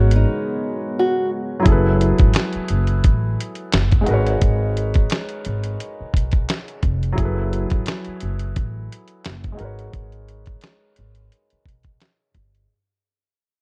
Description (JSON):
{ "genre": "lo-fi hip hop", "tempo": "87 BPM", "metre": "4/4", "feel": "swing 57% on 16ths", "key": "unclear", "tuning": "A4 = 440 Hz", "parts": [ { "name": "nylon-string guitar", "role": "melody", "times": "0.0-1.3 s", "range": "D#4 to F#4", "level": "-25 LUFS", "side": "equal", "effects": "none" }, { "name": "felt-muted upright piano", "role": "accompaniment", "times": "0.0-12.7 s", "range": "F#3 to C#5", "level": "-27 LUFS", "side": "equal", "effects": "cassette tape, low-pass filter" }, { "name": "deep dark ambient pad", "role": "sustained chords", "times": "0.0-1.6 s", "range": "G#3 to F#4", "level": "-33 LUFS", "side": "equal", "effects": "chorus, built-in reverb" }, { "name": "upright bass", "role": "bass", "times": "0.0-12.7 s", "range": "E#1 to B1", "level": "-23 LUFS", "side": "equal", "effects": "none" }, { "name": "dusty soul sampler-style drum kit", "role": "drums", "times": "0.1-12.7 s", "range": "handclaps, hi-hat, kick drum, snare drum", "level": "-20 LUFS", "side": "equal", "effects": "none" } ], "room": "little or no reverb", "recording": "dark, warm production", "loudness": "-20 LUFS", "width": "mono", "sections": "0.0-1.7 A section; 1.7-12.7 B section", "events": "break 0.3-1.7; fade-out 1.7-12.7; filter sweep on felt piano 1.7-12.7", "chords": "0.0 G#m11; 1.7 F#m11; 4.1 G#m11; 7.2 F#m11; 9.6 G#m11" }